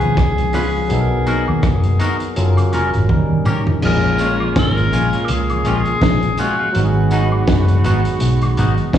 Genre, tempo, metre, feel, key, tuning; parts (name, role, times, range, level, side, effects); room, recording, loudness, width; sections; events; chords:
lovers rock reggae; 82 BPM; 4/4; swing 57% on 16ths; A4 = 440 Hz
clear tenor saxophone; melody; 0.0-7.1 s; F#4 to A#4; -22 LUFS; left 2 dB; tape echo, slapback echo
barky tine electric piano; accompaniment; 0.0-9.0 s; C#3 to A#4; -22 LUFS; left 4 dB; slapback echo
mellow tonewheel organ; accompaniment; 0.0-8.8 s; D#2 to F#4; -27 LUFS; right 2 dB
vintage muted fingered electric bass; bass; 0.0-9.0 s; E#1 to D#2; -17 LUFS; equal
crunchy breakbeat drum kit; drums; 0.0-9.0 s; crash cymbal, hi-hat, kick drum, rim click, snare drum, toms; -20 LUFS; right 1 dB
twangy electric guitar; stabs; 0.5-8.7 s; G#3 to B4; -23 LUFS; right 1 dB; lush chorus, slapback echo
tambourine and woodblock; percussion; 0.5-8.8 s; -32 LUFS; equal; slapback echo
mellow saxophone section; second line; 3.8-9.0 s; A#3 to F#4; -26 LUFS; right 1 dB; tape echo, slapback echo
light reverb; live gig heard through the venue's PA, cassette tape, recital hall reverb, studio ambience; -14 LUFS; side -10 dB against mid
0.0-3.8 A section; 3.8-9.0 B section
drum fill 3.1-3.8
0.0 C#7; 0.9 Bmaj7; 2.4 F#maj7; 3.1 D#7; 3.8 A#m7; 6.7 G#m7